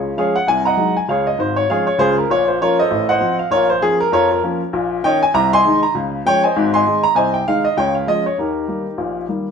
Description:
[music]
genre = jazz, stride piano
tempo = 197 BPM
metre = 4/4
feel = swing 58% on 8ths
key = Ab major from 4.7 s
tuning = A4 = 440 Hz
[part]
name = warm upright piano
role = solo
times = 0.0-9.5 s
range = Ab1 to C6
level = -14 LUFS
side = equal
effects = none
[sound]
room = moderate stone room reverb, RT60 1.1 s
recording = band playing live in one room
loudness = -14 LUFS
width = side -6 dB against mid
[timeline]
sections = 0.0-9.5 A section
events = none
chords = 0.5 Ab7/C; 1.1 Db; 2.3 Bbm; 2.9 F7/A; 3.5 Bbm; 4.7 Eb5/Bb; 5.3 Ab/C; 5.9 Db; 6.6 Ab; 7.2 Ab/C; 7.8 Db; 8.4 Eb

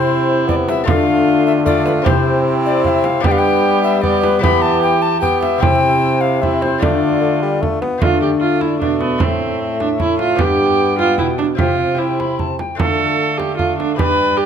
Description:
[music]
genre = classical, renaissance-style consort dance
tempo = 151 BPM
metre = 3/4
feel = straight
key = D dorian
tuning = A4 = 445 Hz
[part]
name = alto recorder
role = melody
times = 0.0-14.5 s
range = B4 to B5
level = -21 LUFS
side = left 6 dB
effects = none
[part]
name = warm viola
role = second line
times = 0.0-14.5 s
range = B3 to B4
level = -18 LUFS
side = right 5 dB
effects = none
[part]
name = lute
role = accompaniment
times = 0.0-14.5 s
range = G2 to E5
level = -22 LUFS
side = left 8 dB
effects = none
[part]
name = warm bassoon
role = accompaniment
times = 0.0-14.5 s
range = G3 to C4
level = -22 LUFS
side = left 2 dB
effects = none
[part]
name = warm trombone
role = bass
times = 0.0-14.5 s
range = G2 to G3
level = -21 LUFS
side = right 1 dB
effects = none
[part]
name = frame drum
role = percussion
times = 0.5-14.2 s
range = none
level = -21 LUFS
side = right 3 dB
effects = none
[sound]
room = moderate recital hall reverb, RT60 1.4 s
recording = none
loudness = -13 LUFS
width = side -8 dB against mid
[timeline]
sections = 0.0-8.0 A section; 8.0-14.5 B section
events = none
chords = 0.0 C; 0.9 Dm; 2.1 C; 3.2 G; 4.4 Em; 5.6 C; 6.8 Dm; 9.2 Am; 10.4 G; 11.6 C; 12.8 Dm

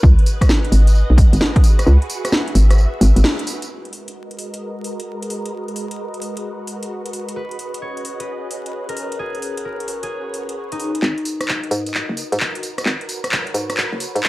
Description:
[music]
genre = UK garage, two-step garage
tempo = 131 BPM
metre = 4/4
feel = swing 66% on 16ths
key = G# minor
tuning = A4 = 438 Hz
[part]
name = soft string machine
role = sustained chords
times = 0.0-14.3 s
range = G#3 to E5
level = -29 LUFS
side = equal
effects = phaser, ensemble chorus, sidechain pumping
[part]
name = hollow knocking FM bass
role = bass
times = 0.0-3.2, 11.0-14.2 s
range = F#1 to G#2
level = -13 LUFS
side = equal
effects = sidechain pumping, high-pass filter
[part]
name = electronic kick drum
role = drums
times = 0.0-1.6 s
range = none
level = -12 LUFS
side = equal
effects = overdrive
[part]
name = house drum kit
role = drums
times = 0.0-14.3 s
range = handclaps, hi-hat, rim click, snare drum, tambourine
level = -22 LUFS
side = equal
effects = overdrive
[part]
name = concert harp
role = melody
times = 7.4-13.4 s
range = D#4 to C#5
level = -28 LUFS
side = left 2 dB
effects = none
[sound]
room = digital ambience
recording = dry, gritty hardware recording, transformer saturation, vinyl crackle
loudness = -16 LUFS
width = side -20 dB against mid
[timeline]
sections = 0.0-3.7 A section; 3.7-11.0 B section; 11.0-14.3 C section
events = break 1.9-3.7; band accent 3.2; filter sweep on string machine 3.7-11.0; build-up 11.0-14.3; drum fill 11.0-14.3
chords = 0.0 C#7sus4 (rootless); 3.7 G#m7; 7.4 C#7sus4; 11.0 G#m7

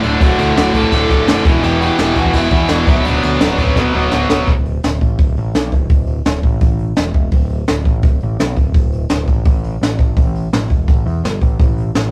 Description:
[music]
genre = punk rock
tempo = 168 BPM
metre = 4/4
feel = straight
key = D major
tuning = A4 = 440 Hz
[part]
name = bluesy overdriven lead guitar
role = melody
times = 0.0-3.6 s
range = D4 to A5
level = -22 LUFS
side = equal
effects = distortion
[part]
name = cranked stack guitar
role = riff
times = 0.0-4.5 s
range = D2 to B3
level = -21 LUFS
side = equal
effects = overdrive
[part]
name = heavy high-gain guitar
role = riff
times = 0.0-4.5 s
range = D2 to B3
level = -22 LUFS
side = equal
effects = distortion
[part]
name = tight distorted guitar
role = riff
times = 0.0-4.5 s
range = D2 to B3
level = -24 LUFS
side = equal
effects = distortion
[part]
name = growling picked electric bass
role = bass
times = 0.0-12.1 s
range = D1 to E2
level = -21 LUFS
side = equal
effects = overdrive
[part]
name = jazz brush drum kit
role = drums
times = 0.0-12.0 s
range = crash cymbal, hi-hat, kick drum, snare drum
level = -17 LUFS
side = equal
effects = none
[sound]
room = light reverb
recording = rough rehearsal-room recording, warm saturation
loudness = -15 LUFS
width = mono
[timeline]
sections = 0.0-4.5 A section; 4.5-12.1 B section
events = drum fill 3.8-4.5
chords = 0.0 D; 1.5 Em; 2.9 Bm/D; 4.5 D5; 7.0 N.C.; 7.3 D5; 9.5 N.C.; 10.2 A5

